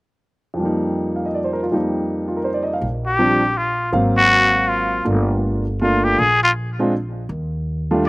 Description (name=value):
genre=jazz, small-group swing and bop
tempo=161 BPM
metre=3/4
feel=swing 64% on 8ths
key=Bb major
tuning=A4 = 443 Hz
part: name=warm concert grand piano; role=accompaniment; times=0.5-8.0 s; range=F2 to F5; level=-20 LUFS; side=equal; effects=none
part: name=upright bass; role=bass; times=2.8-8.1 s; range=G1 to Eb2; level=-23 LUFS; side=equal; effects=none
part: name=trumpet with straight mute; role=melody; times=3.1-8.1 s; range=F4 to Ab4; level=-16 LUFS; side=left 1 dB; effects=none
room=little or no reverb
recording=recorded outdoors, with no room sound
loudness=-16 LUFS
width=side -21 dB against mid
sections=0.6-2.8 A section; 2.8-8.1 B section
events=none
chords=0.6 F7sus4; 2.8 Bb69; 3.9 Ab13; 5.1 Gm9; 6.2 Bb7(no3); 7.3 Ebmaj9#11